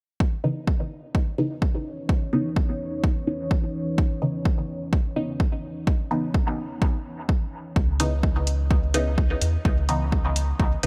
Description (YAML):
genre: dub techno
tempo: 127 BPM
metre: 4/4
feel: straight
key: C# minor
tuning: A4 = 440 Hz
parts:
  - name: deep dark ambient pad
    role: sustained chords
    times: 1.9-7.7 s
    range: E3 to C#5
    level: -36 LUFS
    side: equal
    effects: chorus, built-in reverb, sidechain pumping
  - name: electronic kick drum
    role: drums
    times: 0.2-10.7 s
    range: none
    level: -24 LUFS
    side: equal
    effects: overdrive, small room reverb
  - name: filtered dub chord stab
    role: stabs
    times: 0.4-10.9 s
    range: C#3 to D#4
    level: -31 LUFS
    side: equal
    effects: phaser, sidechain pumping, dub echo
  - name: round analog bass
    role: bass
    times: 7.8-10.9 s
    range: G#1 to E2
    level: -26 LUFS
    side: equal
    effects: sidechain pumping
  - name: electronic hi-hat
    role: drums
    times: 8.0-10.9 s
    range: none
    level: -31 LUFS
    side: equal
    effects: low-pass filter on hats, small room reverb
room: digital ambience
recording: none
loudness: -25 LUFS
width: mono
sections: 0.2-7.8 A section; 7.8-10.9 B section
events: filter sweep on synth stab 0.2-7.8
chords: 0.2 C#m9